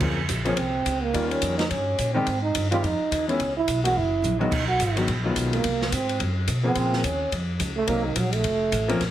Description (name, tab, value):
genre	jazz, small-group swing and bop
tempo	213 BPM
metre	4/4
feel	swing 60% on 8ths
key	Bb minor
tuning	A4 = 440 Hz
part	warm grand piano	accompaniment	0.0-9.0 s	C#3 to Bb4	-28 LUFS	left 3 dB	none
part	upright bass	bass	0.0-9.1 s	F1 to B2	-28 LUFS	equal	none
part	open jazz drum kit	drums	0.0-9.1 s	crash cymbal, hi-hat, kick drum, ride cymbal, snare drum, toms	-29 LUFS	left 1 dB	none
part	breathy trombone	second line	0.5-9.0 s	Eb3 to Gb4	-25 LUFS	right 3 dB	none
room	moderate club reverb, RT60 0.7 s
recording	heavily compressed radio sound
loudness	-22 LUFS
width	side -12 dB against mid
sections	0.0-9.0 A section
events	trombone solo 0.0-9.1; drum fill 4.2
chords	0.0 Bbm9; 1.1 Eb9; 2.3 Abmaj7(no3); 3.4 Dbm7; 4.0 Gb9; 4.5 B6; 5.6 Abadd9/C; 6.2 Bsus2; 6.8 Bbm9; 7.9 Cm7b5; 8.4 F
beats	| 0.01 0.29 0.57 0.86 | 1.14 1.42 1.70 1.98 | 2.26 2.54 2.83 3.11 | 3.39 3.67 3.95 4.23 | 4.51 4.79 5.08 5.36 | 5.64 5.92 6.20 6.48 | 6.76 7.04 7.32 7.60 | 7.88 8.16 8.45 8.73 | 9.01